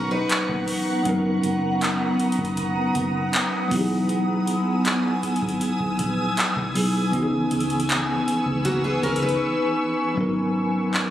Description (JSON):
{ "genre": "contemporary R&B", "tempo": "79 BPM", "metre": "4/4", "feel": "straight", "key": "G# minor", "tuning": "A4 = 445 Hz", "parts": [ { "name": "bell-like tine electric piano", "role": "accompaniment", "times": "0.0-11.1 s", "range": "E3 to A#4", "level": "-24 LUFS", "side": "equal", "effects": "fast stereo tremolo" }, { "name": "ethereal airy pad", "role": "sustained chords", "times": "0.0-11.1 s", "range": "B3 to E6", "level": "-26 LUFS", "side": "equal", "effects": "ensemble chorus, built-in reverb, phaser" }, { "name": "picked steel-string acoustic guitar", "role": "arpeggios", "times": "0.0-1.0, 8.7-10.1 s", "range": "A#3 to B4", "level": "-26 LUFS", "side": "equal", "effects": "ping-pong delay" }, { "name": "vintage muted fingered electric bass", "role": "bass", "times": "0.0-11.1 s", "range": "E1 to C#2", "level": "-30 LUFS", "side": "equal", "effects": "none" }, { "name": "booming analog drum machine", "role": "drums", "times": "0.3-11.1 s", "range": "handclaps, hi-hat, kick drum", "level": "-27 LUFS", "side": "equal", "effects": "none" } ], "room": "light reverb", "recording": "recorded on a phone in the room, studio reverb", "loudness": "-20 LUFS", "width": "side -12 dB against mid", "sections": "0.0-10.2 A section", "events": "silent gap 9.4-10.2", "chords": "0.0 G#m11 (rootless); 1.1 Bmaj7/F#; 3.7 Emaj7; 7.1 C#m7; 10.2 G#m11" }